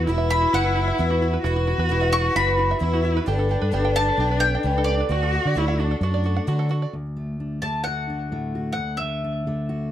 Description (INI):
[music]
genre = folk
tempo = 131 BPM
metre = 4/4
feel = straight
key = D major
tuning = A4 = 440 Hz
[part]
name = warm cello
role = second line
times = 0.0-6.7 s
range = D4 to F#4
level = -27 LUFS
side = left 1 dB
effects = none
[part]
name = picked twelve-string acoustic guitar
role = accompaniment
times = 0.0-6.9 s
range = D3 to A4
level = -27 LUFS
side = left 2 dB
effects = none
[part]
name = open-back banjo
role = arpeggios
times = 0.0-6.9 s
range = E4 to G5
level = -30 LUFS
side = right 8 dB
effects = none
[part]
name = fingered electric bass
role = bass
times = 0.0-6.8 s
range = E1 to D3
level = -23 LUFS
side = equal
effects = none
[part]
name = bowl-back mandolin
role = melody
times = 0.3-9.9 s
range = D5 to C#6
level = -25 LUFS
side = left 2 dB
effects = analog delay
[part]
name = fingerpicked steel-string acoustic guitar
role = accompaniment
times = 6.9-9.9 s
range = D2 to F#4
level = -28 LUFS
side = left 1 dB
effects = none
[sound]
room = light reverb, studio reverb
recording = dark, warm production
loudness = -20 LUFS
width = side -11 dB against mid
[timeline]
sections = 0.0-6.9 A section; 6.9-9.9 B section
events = none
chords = 0.0 Esus2; 3.3 Gadd9; 5.1 D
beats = 0.08 0.53 0.99 | 1.45 1.90 2.36 2.82 | 3.27 3.73 4.19 4.64 | 5.10 5.56 6.02 6.48 | 6.93 7.39 7.85 8.31 | 8.78 9.24 9.70